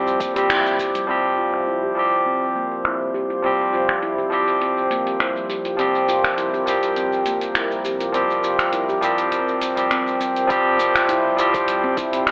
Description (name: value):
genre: organic downtempo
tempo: 102 BPM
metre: 4/4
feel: swing 54% on 16ths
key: unclear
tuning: A4 = 440 Hz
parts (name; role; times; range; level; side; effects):
- barky tine electric piano; accompaniment; 0.0-12.3 s; F3 to G4; -23 LUFS; equal; overdrive, sidechain pumping, digital delay
- handpan; arpeggios; 0.0-12.3 s; G3 to C5; -27 LUFS; equal; low-pass filter, digital delay
- warm sub bass; bass; 0.0-1.0, 11.7-12.3 s; G1 to C2; -48 LUFS; equal; none
- deep house drum kit; drums; 0.1-12.3 s; finger snaps, hi-hat, shaker; -27 LUFS; equal; low-pass filter on perc, low-pass filter on hats, low-pass filter on snare, low-pass filter on room
- electronic kick drum; drums; 0.2-0.9, 10.5-12.1 s; none; -37 LUFS; equal; none
- airy breathy pad; sustained chords; 2.0-12.3 s; F3 to G5; -32 LUFS; equal; chorus, sidechain pumping
room: moderate echo chamber reverb, RT60 1.5 s, digital ambience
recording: telephone sound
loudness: -20 LUFS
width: mono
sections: 0.0-1.1 A section; 1.1-10.5 B section; 10.5-12.3 C section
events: band accent 0.5; filter sweep on drum 1.1-10.5; filter sweep on handpan 1.1-10.5; filter sweep on analog synth pad 1.1-10.5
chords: 0.0 Csus4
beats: 0.50 | 1.09 1.68 2.27 2.85 | 3.44 4.03 4.62 5.21 | 5.79 6.38 6.97 7.56 | 8.15 8.73 9.32 9.91 | 10.50 11.09 11.68 12.27